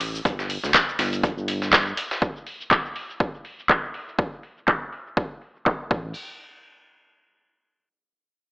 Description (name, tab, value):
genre	deep house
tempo	122 BPM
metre	4/4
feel	swing 56% on 16ths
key	unclear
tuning	A4 = 440 Hz
part	smooth gliding synth bass	bass	0.0-1.9, 5.9-6.1 s	G1 to D2	-30 LUFS	equal	sidechain pumping
part	dusty soul sampler-style drum kit	drums	0.0-2.2 s	hi-hat, snare drum	-26 LUFS	equal	high-pass filter on snare, studio reverb, sidechain pumping on hats, high-pass filter on hats, high-pass filter on room
part	house drum kit	drums	0.0-6.0 s	cabasa, crash cymbal, handclaps, hi-hat	-23 LUFS	equal	low-pass filter on perc, studio reverb, low-pass filter on hats, low-pass filter on snare, low-pass filter on cymbals
part	electronic kick drum	drums	0.3-6.0 s	none	-24 LUFS	equal	studio reverb
room	light reverb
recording	dry, gritty hardware recording, AM radio sound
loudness	-22 LUFS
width	side -36 dB against mid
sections	0.0-6.2 A section; 6.2-8.1 B section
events	filter sweep on drum 0.0-6.2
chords	none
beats	| 0.25 0.74 1.24 1.73 | 2.22 2.71 3.20 3.69 | 4.19 4.68 5.17 5.66